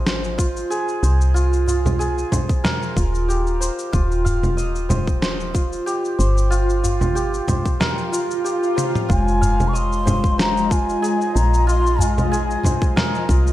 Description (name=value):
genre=organic downtempo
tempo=93 BPM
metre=4/4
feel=swing 54% on 16ths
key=F minor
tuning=A4 = 441 Hz
part: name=santur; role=arpeggios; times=0.0-13.5 s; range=F4 to F5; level=-23 LUFS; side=right 1 dB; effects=tape echo
part: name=woody FM bass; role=bass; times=0.0-13.5 s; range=Eb1 to C2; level=-20 LUFS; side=equal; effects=sidechain pumping
part: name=dusty soul sampler-style drum kit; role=drums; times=0.1-13.5 s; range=congas, shaker, snare drum, toms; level=-24 LUFS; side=equal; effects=none
part: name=electronic kick drum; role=drums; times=0.4-13.4 s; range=none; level=-20 LUFS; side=equal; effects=none
part: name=udu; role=percussion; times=1.7-12.8 s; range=none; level=-24 LUFS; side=left 1 dB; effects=none
part: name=swell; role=sound effects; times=8.1-9.1 s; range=none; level=-28 LUFS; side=right 2 dB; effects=none
part: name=bansuri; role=melody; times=9.1-13.3 s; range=Ab5 to Db6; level=-24 LUFS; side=left 2 dB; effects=tape echo
part: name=ethereal airy pad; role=sustained chords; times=9.9-13.5 s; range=Ab3 to Eb5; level=-29 LUFS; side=left 1 dB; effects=ensemble chorus, built-in reverb, tremolo, sidechain pumping
part: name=bronze singing bowl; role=texture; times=9.1-13.5 s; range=Ab3 to F5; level=-28 LUFS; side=left 3 dB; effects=none
room=light reverb, studio reverb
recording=dark, warm production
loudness=-17 LUFS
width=side -14 dB against mid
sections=0.0-13.5 A section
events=swell 8.1-9.1; drum fill 8.8-9.1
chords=0.0 Ab6; 3.9 Eb; 9.1 Fm7